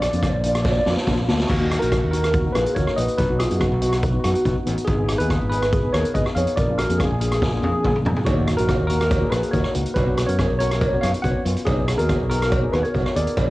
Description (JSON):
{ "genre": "calypso", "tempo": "142 BPM", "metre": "4/4", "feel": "straight", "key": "Eb minor", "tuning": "A4 = 440 Hz", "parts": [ { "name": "tine electric piano", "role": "melody", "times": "0.0-13.5 s", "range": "Eb4 to F#5", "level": "-24 LUFS", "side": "equal", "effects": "phaser, cassette tape, plate reverb, tape echo" }, { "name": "steel pan", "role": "accompaniment", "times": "0.0-13.5 s", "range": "Bb3 to Ab4", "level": "-27 LUFS", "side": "left 2 dB", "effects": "cassette tape, plate reverb" }, { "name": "modern bright fingered electric bass", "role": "bass", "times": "0.0-13.5 s", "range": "Ab1 to F#2", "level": "-24 LUFS", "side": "equal", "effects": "none" }, { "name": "street-band drum kit", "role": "drums", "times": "0.0-13.5 s", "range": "crash cymbal, hi-hat, kick drum, rim click, snare drum, toms", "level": "-23 LUFS", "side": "equal", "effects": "none" }, { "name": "cowbell", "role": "percussion", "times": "0.2-1.2, 8.3-13.5 s", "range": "none", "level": "-31 LUFS", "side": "right 1 dB", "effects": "none" } ], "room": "light reverb", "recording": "home recording on cassette, nothing above 10.5 kHz", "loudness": "-18 LUFS", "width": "side -18 dB against mid", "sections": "0.0-1.5 A section; 1.5-13.5 A section", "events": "drum fill 0.6-1.5, 7.4-8.3", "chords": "0.0 Bb; 1.5 Ebm; 3.2 B; 4.9 Abm; 6.6 Bb; 8.3 Ebm; 10.0 Bsus2; 11.7 Abmadd9/Cb", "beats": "0.22 0.65 1.07 | 1.49 1.92 2.34 2.77 | 3.19 3.61 4.04 4.46 | 4.88 5.31 5.73 6.15 | 6.58 7.00 7.42 7.85 | 8.27 8.70 9.12 9.54 | 9.97 10.39 10.82 11.24 | 11.67 12.10 12.52 12.95 | 13.37" }